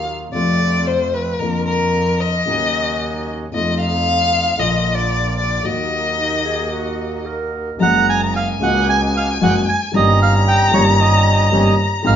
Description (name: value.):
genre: tango.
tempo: 113 BPM.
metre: 4/4.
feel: rubato.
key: Eb minor, F# major from 7.8 s.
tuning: A4 = 440 Hz.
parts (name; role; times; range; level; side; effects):
warm violin; second line; 0.0-12.2 s; Bb4 to A#5; -19 LUFS; left 3 dB; none.
dark upright piano; accompaniment; 0.0-12.2 s; G1 to G#4; -21 LUFS; left 2 dB; none.
bandoneon; stabs; 0.0-12.2 s; D3 to G#4; -30 LUFS; right 4 dB; none.
clear double bass; bass; 0.0-12.2 s; F#1 to F2; -21 LUFS; right 1 dB; none.
warm clarinet; second line; 6.2-7.8 s; Eb4 to Bb4; -27 LUFS; right 3 dB; none.
bandoneon; melody; 7.8-12.2 s; C#5 to G#5; -18 LUFS; right 4 dB; none.
room: wet stone room reverb, RT60 0.9 s.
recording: band playing live in one room, nothing above 7.5 kHz.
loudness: -14 LUFS.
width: side -9 dB against mid.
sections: 0.0-7.8 A section; 7.8-12.2 B section.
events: violin solo 0.0-7.8.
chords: 0.3 F; 1.4 Bb/F; 2.5 Ebm7; 3.5 F7; 4.6 Bb; 5.6 Ebm; 7.8 F#add9; 9.9 D#7/G.